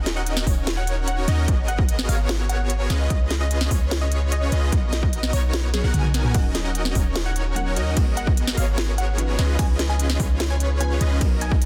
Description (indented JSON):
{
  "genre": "future bass",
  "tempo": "148 BPM",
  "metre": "4/4",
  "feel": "half-time",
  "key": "unclear",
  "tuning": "A4 = 440 Hz",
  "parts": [
    { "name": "airy dreamy lead", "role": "arpeggios", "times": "0.0-11.7 s", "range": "Db5 to Ab5", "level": "-37 LUFS", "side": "equal", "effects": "chorus, vintage 12-bit sampler grit, sidechain pumping, tape echo" },
    { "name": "supersaw chords", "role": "riff", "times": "0.0-11.7 s", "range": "Cb4 to Ab5", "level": "-32 LUFS", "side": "equal", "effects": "cassette tape, sidechain pumping, tape echo" },
    { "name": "warm 808-style bass", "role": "bass", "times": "0.0-11.7 s", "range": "Eb1 to Eb2", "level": "-25 LUFS", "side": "equal", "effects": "sidechain pumping" },
    { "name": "trap drum kit", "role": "drums", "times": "0.1-11.7 s", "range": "hi-hat, ride cymbal, snare drum, toms", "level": "-30 LUFS", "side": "equal", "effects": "none" },
    { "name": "unison pluck", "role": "melody", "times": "0.2-11.6 s", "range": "Ab4 to Ab5", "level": "-36 LUFS", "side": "equal", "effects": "cassette tape, sidechain pumping, dub echo" },
    { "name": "electronic kick drum", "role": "drums", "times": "0.5-11.6 s", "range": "none", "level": "-23 LUFS", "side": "equal", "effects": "none" },
    { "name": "felt-muted upright piano", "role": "accompaniment", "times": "6.3-11.7 s", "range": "F3 to Cb5", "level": "-36 LUFS", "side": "equal", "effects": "sidechain pumping, tape echo" }
  ],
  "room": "light reverb",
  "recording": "dense, heavily limited modern master",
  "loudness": "-22 LUFS",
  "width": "mono",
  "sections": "0.0-11.7 A section",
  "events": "drum fill 5.7-6.3",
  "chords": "0.0 Ebm7; 1.5 Abm9; 2.9 Db9; 4.7 Bmaj7; 6.3 Ebm7; 8.0 Abm9; 9.4 Db9"
}